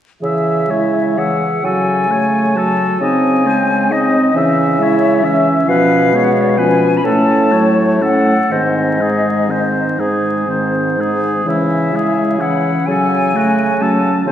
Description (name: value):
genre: classical, slow romantic movement for wind quintet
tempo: 40-45 BPM (dotted quarters)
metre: 6/8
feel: rubato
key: C# minor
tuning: A4 = 440 Hz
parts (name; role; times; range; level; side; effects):
- silver concert flute; melody; 0.2-14.3 s; D5 to B5; -18 LUFS; left 3 dB; none
- warm oboe; second line; 0.2-14.3 s; E4 to E5; -20 LUFS; left 1 dB; none
- bright clarinet; accompaniment; 0.2-14.3 s; A3 to A4; -19 LUFS; right 2 dB; none
- warm French horn; accompaniment; 0.2-14.3 s; D#3 to B#3; -18 LUFS; equal; none
- warm bassoon; bass; 0.2-14.3 s; G#2 to C#3; -18 LUFS; right 1 dB; none
room: wet concert hall reverb, RT60 2.3 s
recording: heard from further back in the room, vinyl crackle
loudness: -12 LUFS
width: side -10 dB against mid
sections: 0.2-14.3 A section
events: none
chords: 0.2 C#m; 1.6 F#m/C#; 3.0 G#/C#; 4.3 C#m; 5.7 C#7/B; 7.1 F#m/A; 8.5 G#; 11.5 C#m; 12.9 F#m/C#